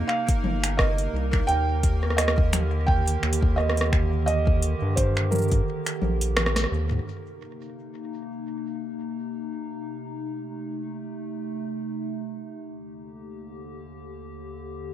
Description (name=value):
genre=IDM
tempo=86 BPM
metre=4/4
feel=swing 56% on 16ths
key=C dorian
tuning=A4 = 439 Hz
part: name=felt-muted upright piano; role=melody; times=0.0-6.7 s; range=Bb4 to G5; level=-29 LUFS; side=right 3 dB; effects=ping-pong delay
part: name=warbly tape-like pad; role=sustained chords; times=0.0-14.9 s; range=Eb2 to G4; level=-32 LUFS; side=right 2 dB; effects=chorus, built-in reverb
part: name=round analog bass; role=bass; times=0.0-7.0 s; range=G1 to G2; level=-24 LUFS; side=equal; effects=none
part: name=pulsing gated texture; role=texture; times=0.0-7.1 s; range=Bb3 to Bb4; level=-37 LUFS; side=right 1 dB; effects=chorus, built-in reverb
part: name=booming analog drum machine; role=drums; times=0.1-7.0 s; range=finger snaps, hi-hat, rim click, shaker, snare drum, toms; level=-26 LUFS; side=equal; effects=overdrive, low-pass filter on hats, low-pass filter on snare, low-pass filter on toms, low-pass filter on perc, low-pass filter on room
part: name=electronic kick drum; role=drums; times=0.3-5.6 s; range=none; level=-23 LUFS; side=equal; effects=none
room=little or no reverb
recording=rough home demo mix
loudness=-23 LUFS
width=side -12 dB against mid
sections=0.0-7.1 A section; 7.1-14.9 B section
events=break 5.7-7.1; drum fill 6.4-7.1; band accent 6.5-6.8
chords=0.0 Cm7; 1.5 Ebmaj7; 7.1 Cm7; 12.6 Ebmaj7